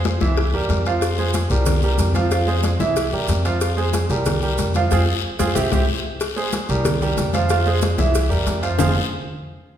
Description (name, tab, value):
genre	latin, salsa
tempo	185 BPM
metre	4/4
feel	straight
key	F harmonic minor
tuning	A4 = 438 Hz
part	clear grand piano	accompaniment	0.0-8.9 s	E3 to F5	-22 LUFS	right 3 dB	none
part	upright bass	bass	0.0-8.9 s	F1 to F2	-21 LUFS	equal	none
part	guiro	percussion	0.0-8.9 s	none	-31 LUFS	left 6 dB	none
part	congas	percussion	0.1-8.9 s	none	-27 LUFS	left 2 dB	none
part	cowbell and bongos	percussion	0.1-8.9 s	none	-28 LUFS	left 4 dB	none
part	maracas	percussion	1.0-8.9 s	none	-34 LUFS	right 8 dB	none
room	wet recital hall reverb, RT60 1.5 s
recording	recorded in a church or concert hall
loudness	-17 LUFS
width	side -10 dB against mid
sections	0.0-6.2 A section; 6.2-8.8 B section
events	band accent 4.9-6.2; drum fill 5.7-6.2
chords	0.4 C7; 1.0 Fm; 1.7 C5; 2.3 Fm; 3.0 C7; 3.6 Fm; 4.3 C5; 4.9 Fm; 5.6 C; 6.2 Abmaj9; 6.9 C5; 7.5 Fm; 8.2 C7; 8.8 Fm